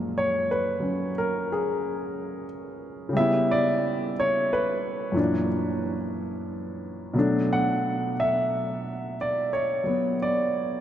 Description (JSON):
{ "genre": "solo jazz", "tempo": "60 BPM", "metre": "4/4", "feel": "swing 69% on 8ths", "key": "unclear", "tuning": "A4 = 440 Hz", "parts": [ { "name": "warm grand piano", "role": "solo", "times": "0.0-10.8 s", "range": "F#2 to F#5", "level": "-24 LUFS", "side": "equal", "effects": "none" } ], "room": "wet cathedral reverb, RT60 5.2 s", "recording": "in a vast, echoing space, faint mains hum", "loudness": "-23 LUFS", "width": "side -10 dB against mid", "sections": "0.0-10.8 A section", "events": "grand piano solo 0.0-10.8", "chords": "0.0 F#maj9; 3.1 C#m7b5; 5.1 F#7b13; 7.1 Bm7", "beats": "0.12 1.12 2.13 | 3.13 4.13 5.14 6.14 | 7.15 8.15 9.16 10.16" }